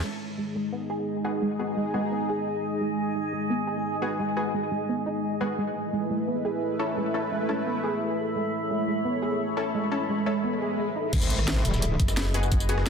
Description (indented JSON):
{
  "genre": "dark technical drum and bass",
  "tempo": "173 BPM",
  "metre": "4/4",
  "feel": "straight",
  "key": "G# phrygian",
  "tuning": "A4 = 440 Hz",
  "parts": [
    { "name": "sweeping resonant pad", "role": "sustained chords", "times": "0.0-11.1 s", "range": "G#3 to C#5", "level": "-30 LUFS", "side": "equal", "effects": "chorus, sidechain pumping" },
    { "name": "soft round pluck", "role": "arpeggios", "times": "0.0-11.1 s", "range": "G#3 to G#4", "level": "-31 LUFS", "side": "right 3 dB", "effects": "ensemble chorus, cassette tape, sidechain pumping, ping-pong delay" },
    { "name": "granular cloud pad", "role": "texture", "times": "0.9-12.9 s", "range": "G#4 to B5", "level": "-32 LUFS", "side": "equal", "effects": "built-in reverb, sidechain pumping" },
    { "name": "orchestra-hit-like synth stab", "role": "stabs", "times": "1.2-12.9 s", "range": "B3 to A4", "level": "-33 LUFS", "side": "left 3 dB", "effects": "built-in reverb, ping-pong delay" },
    { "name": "swell and impact", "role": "sound effects", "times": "10.5-12.5 s", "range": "none", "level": "-32 LUFS", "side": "equal", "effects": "none" },
    { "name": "metallic wobble bass", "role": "bass", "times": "11.1-12.0 s", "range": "D#1 to G#1", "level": "-26 LUFS", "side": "equal", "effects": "chorus, sidechain pumping" },
    { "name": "breakbeat sampler-style drum kit", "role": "drums", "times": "11.1-12.9 s", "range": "hi-hat, snare drum", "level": "-40 LUFS", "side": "left 1 dB", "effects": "none" },
    { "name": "drum and bass drum kit", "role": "drums", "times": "11.1-12.9 s", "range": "crash cymbal, hi-hat, rim click, snare drum, tambourine", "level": "-32 LUFS", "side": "left 1 dB", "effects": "overdrive" },
    { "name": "electronic kick drum", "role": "drums", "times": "11.1-12.6 s", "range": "none", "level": "-25 LUFS", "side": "equal", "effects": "none" },
    { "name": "growling FM bass", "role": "bass", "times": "12.0-12.9 s", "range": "F#1", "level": "-26 LUFS", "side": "equal", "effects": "none" }
  ],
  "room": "moderate lush hall reverb, RT60 2.1 s",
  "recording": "dense, heavily limited modern master",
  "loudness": "-25 LUFS",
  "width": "side -6 dB against mid",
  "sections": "0.0-11.1 A section; 11.1-12.9 B section",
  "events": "swell 10.5-11.1; drop 11.1-12.9; impact 11.1-12.5",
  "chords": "0.0 G#m7; 5.6 A; 11.1 G#m7"
}